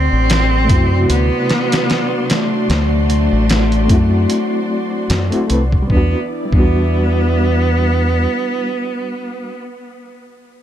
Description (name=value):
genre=trip hop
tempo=75 BPM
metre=4/4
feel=swing 56% on 16ths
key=E minor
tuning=A4 = 440 Hz
part: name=clear cello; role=melody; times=0.0-9.6 s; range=A3 to C4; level=-19 LUFS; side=equal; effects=tape echo
part: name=string machine, cellos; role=sustained chords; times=0.0-8.9 s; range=E4 to C6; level=-23 LUFS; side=equal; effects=ensemble chorus
part: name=deep dub fingered electric bass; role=bass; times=0.0-8.3 s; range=A1 to F#2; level=-16 LUFS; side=equal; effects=none
part: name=trip hop sampler-style drum kit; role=drums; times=0.3-6.7 s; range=hi-hat, kick drum, snare drum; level=-17 LUFS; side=equal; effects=none
part: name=reed electric piano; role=accompaniment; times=0.6-9.6 s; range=C3 to B4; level=-22 LUFS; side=equal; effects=medium tremolo, tape echo
room=digital ambience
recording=none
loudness=-13 LUFS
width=side -10 dB against mid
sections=0.0-5.9 A section; 5.9-9.1 B section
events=none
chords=0.0 D7; 5.9 Em7